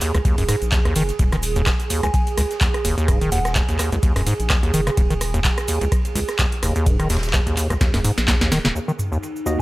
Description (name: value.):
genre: acid house.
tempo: 127 BPM.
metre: 4/4.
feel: swing 56% on 16ths.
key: Eb minor.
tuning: A4 = 440 Hz.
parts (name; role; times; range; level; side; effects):
warbly tape-like pad; sustained chords; 0.0-9.6 s; Eb4 to Ab4; -29 LUFS; right 5 dB; chorus, built-in reverb, sidechain pumping.
acid bass, square; riff; 0.0-9.6 s; Db2 to Eb3; -22 LUFS; equal; overdrive, sidechain pumping.
booming analog drum machine; drums; 0.0-9.6 s; crash cymbal, handclaps, hi-hat, rim click, snare drum, toms; -24 LUFS; equal; low-pass filter on hats, low-pass filter on cymbals, low-pass filter on snare, low-pass filter on toms, low-pass filter on room.
loose indie drum kit; drums; 0.0-9.6 s; ride cymbal, snare drum; -37 LUFS; right 2 dB; none.
cabasa; percussion; 0.0-9.6 s; none; -35 LUFS; right 2 dB; none.
round analog bass; bass; 0.1-8.7 s; Eb1 to Db2; -25 LUFS; equal; sidechain pumping.
electronic kick drum; drums; 0.2-8.4 s; none; -20 LUFS; equal; none.
soft synth bell; melody; 2.0-3.5, 9.6 s; Gb5 to Ab5; -29 LUFS; equal; chorus, analog delay.
tine electric piano; stabs; 9.5-9.6 s; Bb3 to Eb5; -22 LUFS; right 1 dB; medium stereo tremolo.
room: little or no reverb.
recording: none.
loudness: -17 LUFS.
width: side -18 dB against mid.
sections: 0.0-8.8 A section.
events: drum fill 7.8-8.8.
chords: 0.0 N.C.; 8.8 Ebm.